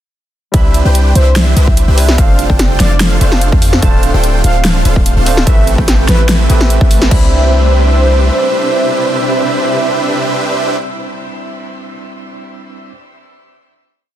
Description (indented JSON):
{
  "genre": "future bass",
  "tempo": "146 BPM",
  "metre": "4/4",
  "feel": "half-time",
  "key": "C major",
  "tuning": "A4 = 440 Hz",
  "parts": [
    { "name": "warm velvety synth lead", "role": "melody", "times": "0.5-10.8 s", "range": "B4 to A5", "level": "-21 LUFS", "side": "equal", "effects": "chorus, sidechain pumping, tape echo" },
    { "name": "barky tine electric piano", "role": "accompaniment", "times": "0.5-12.9 s", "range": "G3 to B5", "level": "-22 LUFS", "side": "right 2 dB", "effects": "overdrive, fast stereo tremolo, sidechain pumping, tape echo" },
    { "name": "shimmering ambient pad", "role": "sustained chords", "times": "2.0-10.8 s", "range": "C3 to B5", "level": "-24 LUFS", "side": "equal", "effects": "chorus, built-in reverb, sidechain pumping" },
    { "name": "airy dreamy lead", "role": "arpeggios", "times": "0.5-10.8 s", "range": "E5 to G5", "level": "-22 LUFS", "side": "right 1 dB", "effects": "chorus, sidechain pumping" },
    { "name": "supersaw chords", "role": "riff", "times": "0.5-10.8 s", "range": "C4 to G5", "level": "-19 LUFS", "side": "right 1 dB", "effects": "sidechain pumping, tape echo" },
    { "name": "warm 808-style bass", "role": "bass", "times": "0.5-8.3 s", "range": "D1 to F2", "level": "-11 LUFS", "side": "equal", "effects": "sidechain pumping" },
    { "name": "big-room dance drum kit", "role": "drums", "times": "0.5-7.2 s", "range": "crash cymbal, hi-hat, snare drum", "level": "-17 LUFS", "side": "equal", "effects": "overdrive" },
    { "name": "electronic kick drum", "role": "drums", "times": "0.5-7.2 s", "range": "none", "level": "-11 LUFS", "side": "equal", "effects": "overdrive" }
  ],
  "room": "little or no reverb",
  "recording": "dense, heavily limited modern master",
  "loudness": "-8 LUFS",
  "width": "side -12 dB against mid",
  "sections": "0.5-7.1 drop; 7.1-10.4 final chord",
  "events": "drop 0.5-7.1; band accent 7.0",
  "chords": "0.5 Cmaj9; 2.2 F6; 3.8 Dm7; 5.5 Am9; 7.1 Cmaj9"
}